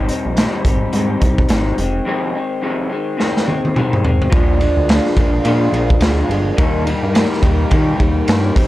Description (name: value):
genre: indie pop, bedroom pop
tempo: 106 BPM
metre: 4/4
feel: swing 60% on 16ths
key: Eb major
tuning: A4 = 440 Hz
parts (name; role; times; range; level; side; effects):
- electric guitar through a small old amp; accompaniment; 0.0-8.7 s; F2 to Eb4; -18 LUFS; left 2 dB; lush chorus, vibrato effect
- chorused synth bass; bass; 0.0-8.7 s; F1 to Eb3; -19 LUFS; equal; none
- raw garage drum kit; drums; 0.1-8.7 s; hi-hat, kick drum, ride cymbal, snare drum, toms; -16 LUFS; equal; none
- hollow soft pad; sustained chords; 4.3-8.7 s; D4 to G5; -26 LUFS; right 1 dB; chorus
room: little or no reverb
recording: none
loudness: -14 LUFS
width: side -16 dB against mid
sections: 0.0-4.3 A section; 4.3-8.7 B section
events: drum fill 3.2-4.3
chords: 0.0 Abmaj7; 1.8 Fm7; 4.3 Bb7; 6.6 Eb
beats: 0.36 0.93 1.50 | 2.06 2.63 3.19 3.76 | 4.32 4.89 5.46 6.02 | 6.58 7.15 7.71 8.28